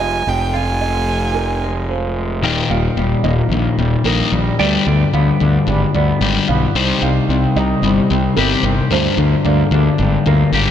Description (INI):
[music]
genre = post-rock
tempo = 111 BPM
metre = 4/4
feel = straight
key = Eb major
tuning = A4 = 440 Hz
[part]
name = dark violin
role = melody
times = 0.0-1.6 s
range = G5 to Ab5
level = -22 LUFS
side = right 4 dB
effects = digital delay
[part]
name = felt-muted upright piano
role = arpeggios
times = 0.0-10.7 s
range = Bb4 to F5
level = -26 LUFS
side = right 9 dB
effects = digital delay
[part]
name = twangy electric guitar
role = arpeggios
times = 0.0-10.7 s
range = Eb2 to G4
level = -23 LUFS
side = right 2 dB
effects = wide subtle chorus, digital delay
[part]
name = fuzz fingered electric bass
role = bass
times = 0.0-10.7 s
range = Eb1 to D2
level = -18 LUFS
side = right 1 dB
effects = overdrive
[part]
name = pedal steel guitar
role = sustained chords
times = 2.4-10.7 s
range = D4 to G5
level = -26 LUFS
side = right 5 dB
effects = wide subtle chorus
[part]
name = sludgy distorted guitar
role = riff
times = 2.4-10.7 s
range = Eb2 to C4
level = -16 LUFS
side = left 5 dB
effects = overdrive
[sound]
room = light reverb, studio ambience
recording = none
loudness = -13 LUFS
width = side -9 dB against mid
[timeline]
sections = 0.0-2.4 A section; 2.4-10.7 B section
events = build-up 2.4-10.7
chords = 0.0 Fm; 2.4 Ebadd9; 4.6 G7/D; 6.8 Cm; 8.9 Gm/D